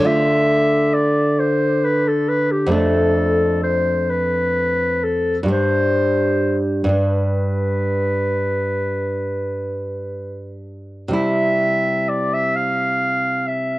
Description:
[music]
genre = romantic duo for clarinet and classical guitar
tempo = 43 BPM (dotted quarters)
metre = 12/8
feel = rubato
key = unclear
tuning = A4 = 440 Hz
[part]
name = warm clarinet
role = melody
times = 0.0-13.8 s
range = G4 to F5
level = -20 LUFS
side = left 1 dB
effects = none
[part]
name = nylon-string guitar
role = accompaniment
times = 0.0-13.8 s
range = F2 to F4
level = -20 LUFS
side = right 1 dB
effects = cassette tape
[sound]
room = light reverb, studio ambience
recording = home recording on cassette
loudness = -16 LUFS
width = side -17 dB against mid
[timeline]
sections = 0.0-13.8 A section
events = none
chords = 0.1 Dm; 2.7 Dm/F; 5.5 G; 11.2 C

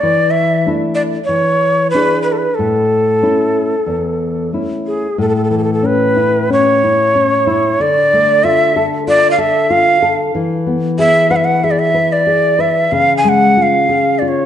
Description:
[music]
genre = fado-style ballad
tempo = 93 BPM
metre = 4/4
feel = rubato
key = A major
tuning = A4 = 440 Hz
[part]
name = breathy bright shakuhachi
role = melody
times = 0.0-14.5 s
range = G#4 to G#5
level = -12 LUFS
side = right 1 dB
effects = none
[part]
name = nylon-string guitar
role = accompaniment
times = 0.0-14.5 s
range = E2 to B4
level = -16 LUFS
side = left 2 dB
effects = none
[sound]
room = wet recital hall reverb, RT60 1.5 s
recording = nothing above 10.4 kHz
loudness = -11 LUFS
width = side -10 dB against mid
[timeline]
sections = 0.0-5.2 A section; 5.2-14.5 A section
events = none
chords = 0.0 E7sus4; 1.3 E7; 2.6 A; 5.2 Aadd9; 7.8 Dm; 10.3 E; 12.9 C#

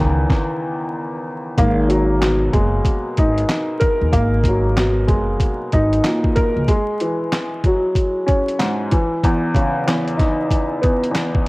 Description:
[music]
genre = hip hop, boom-bap hip-hop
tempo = 94 BPM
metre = 4/4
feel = swing 62% on 16ths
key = G# minor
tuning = A4 = 442 Hz
[part]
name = dark upright piano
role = accompaniment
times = 0.0-11.5 s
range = E2 to A#4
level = -19 LUFS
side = equal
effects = cassette tape, high-pass filter, low-pass filter
[part]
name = upright bass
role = bass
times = 0.0-6.7 s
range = F#1 to D#2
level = -18 LUFS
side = equal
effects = none
[part]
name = boom bap sampler-style drum kit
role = drums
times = 0.3-11.5 s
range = handclaps, hi-hat, kick drum, snare drum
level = -19 LUFS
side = equal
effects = cassette tape
[sound]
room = light reverb, studio reverb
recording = home recording on cassette, vinyl crackle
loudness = -16 LUFS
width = side -22 dB against mid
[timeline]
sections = 0.0-1.6 A section; 1.6-11.5 B section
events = stop 0.3-1.6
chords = 0.0 C#madd9; 1.6 G#m9; 6.7 F#sus2; 8.9 C#m9

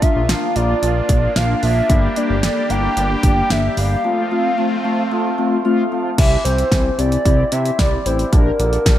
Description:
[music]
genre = synth-pop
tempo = 112 BPM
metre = 4/4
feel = straight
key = C mixolydian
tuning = A4 = 440 Hz
[part]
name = hollow clarinet-like synth lead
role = melody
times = 0.0-9.0 s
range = Bb4 to G5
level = -21 LUFS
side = equal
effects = chorus
[part]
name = mellow synth brass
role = accompaniment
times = 0.0-9.0 s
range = A3 to Bb4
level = -22 LUFS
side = left 2 dB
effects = chorus
[part]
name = phased analog pad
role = sustained chords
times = 0.0-6.2 s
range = A3 to G4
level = -25 LUFS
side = right 1 dB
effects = phaser, chorus
[part]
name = hammered dulcimer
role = arpeggios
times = 0.0-9.0 s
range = D3 to A5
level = -26 LUFS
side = right 1 dB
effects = tape echo
[part]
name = pop drum kit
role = drums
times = 0.0-9.0 s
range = crash cymbal, hi-hat, kick drum, snare drum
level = -18 LUFS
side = equal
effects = none
[part]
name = fat analog bass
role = bass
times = 0.2-9.0 s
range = G1 to C3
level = -20 LUFS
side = equal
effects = none
[sound]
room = light reverb, digital ambience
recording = none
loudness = -14 LUFS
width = side -12 dB against mid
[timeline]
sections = 0.0-6.2 A section; 6.2-9.0 B section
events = none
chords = 0.0 Bb; 1.9 Gm; 4.0 F; 6.2 C; 8.3 Gm/Bb

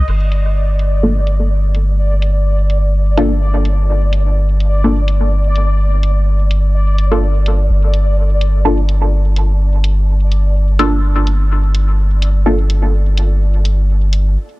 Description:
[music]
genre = dub techno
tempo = 126 BPM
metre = 4/4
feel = swing 55% on 16ths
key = G minor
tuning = A4 = 440 Hz
[part]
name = bubbling stepped-filter texture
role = texture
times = 0.0-14.4 s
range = D5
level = -26 LUFS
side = left 2 dB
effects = chorus, built-in reverb
[part]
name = soft dub sub bass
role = bass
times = 0.1-14.4 s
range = G1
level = -12 LUFS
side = equal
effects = none
[part]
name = deep house drum kit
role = drums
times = 0.1-14.2 s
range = crash cymbal, hi-hat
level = -27 LUFS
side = equal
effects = low-pass filter on hats, low-pass filter on snare, low-pass filter on cymbals, dub echo
[part]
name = filtered dub chord stab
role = stabs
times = 1.0-12.6 s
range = Bb3 to A4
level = -20 LUFS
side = left 1 dB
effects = phaser, dub echo
[sound]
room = little or no reverb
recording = dry, gritty hardware recording, cassette tape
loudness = -12 LUFS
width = side -20 dB against mid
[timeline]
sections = 0.1-14.6 A section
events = break 14.4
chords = 0.1 Gm7

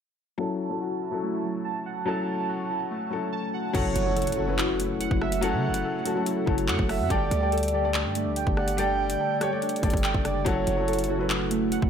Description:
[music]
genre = hip hop, drill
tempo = 143 BPM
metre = 4/4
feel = half-time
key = F# phrygian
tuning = A4 = 440 Hz
[part]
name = dark concert grand piano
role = accompaniment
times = 0.4-11.9 s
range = F#3 to D5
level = -29 LUFS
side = left 6 dB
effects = low-pass filter
[part]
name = warbly lo-fi synth keys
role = arpeggios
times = 0.4-11.9 s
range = F#3 to A5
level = -30 LUFS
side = right 3 dB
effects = chorus, phaser, low-pass filter, tape echo
[part]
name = breathy flute-like synth lead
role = second line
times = 3.7-11.3 s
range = C#5 to G5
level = -32 LUFS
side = right 7 dB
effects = chorus, tape echo
[part]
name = hollow soft pad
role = sustained chords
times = 3.7-11.9 s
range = C#3 to G4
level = -35 LUFS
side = right 2 dB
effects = chorus
[part]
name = hard-hitting 808-style bass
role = bass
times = 3.7-11.9 s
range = F#1 to C#3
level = -30 LUFS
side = equal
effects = none
[part]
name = drill drum kit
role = drums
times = 3.7-11.9 s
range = crash cymbal, handclaps, hi-hat, kick drum, rim click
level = -29 LUFS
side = equal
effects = none
[part]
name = impact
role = sound effects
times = 3.7-5.4 s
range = none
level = -36 LUFS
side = right 1 dB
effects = none
[sound]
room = digital ambience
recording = none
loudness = -24 LUFS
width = side -8 dB against mid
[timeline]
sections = 0.4-3.7 A section; 3.7-11.9 B section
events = filter sweep 0.4-3.7; impact 3.7-5.4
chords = 0.4 F#m7; 7.1 Gsus2; 10.5 F#m7

